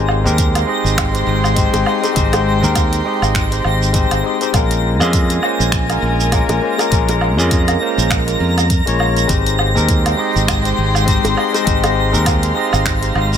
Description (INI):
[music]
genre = sunset chillout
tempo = 101 BPM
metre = 4/4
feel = swing 57% on 16ths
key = unclear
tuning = A4 = 437 Hz
[part]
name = barky tine electric piano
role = accompaniment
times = 0.0-13.4 s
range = Ab3 to Eb5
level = -19 LUFS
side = moving between left 9 dB and right 6 dB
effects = auto-pan, ping-pong delay
[part]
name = airy breathy pad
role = sustained chords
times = 0.0-13.4 s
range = Ab3 to C6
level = -22 LUFS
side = left 2 dB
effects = chorus
[part]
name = modern bright fingered electric bass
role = bass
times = 0.0-13.4 s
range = Ab1 to F2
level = -17 LUFS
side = equal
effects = none
[part]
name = twinkling granular texture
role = texture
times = 0.1-13.4 s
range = Bb6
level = -24 LUFS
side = left 1 dB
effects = built-in reverb
[part]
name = deep house drum kit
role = drums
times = 0.1-13.4 s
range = finger snaps, hi-hat, shaker, woodblock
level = -21 LUFS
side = right 2 dB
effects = none
[part]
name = electronic kick drum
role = drums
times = 0.4-13.0 s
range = none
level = -18 LUFS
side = equal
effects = none
[part]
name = bongos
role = percussion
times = 1.7-2.4, 6.5-7.2, 11.2-11.9 s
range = none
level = -24 LUFS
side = right 3 dB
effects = none
[sound]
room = light reverb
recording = none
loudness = -13 LUFS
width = side -8 dB against mid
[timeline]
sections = 0.0-13.4 A section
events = none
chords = 0.0 Abmaj7; 4.5 Bbm7; 9.3 Abmaj7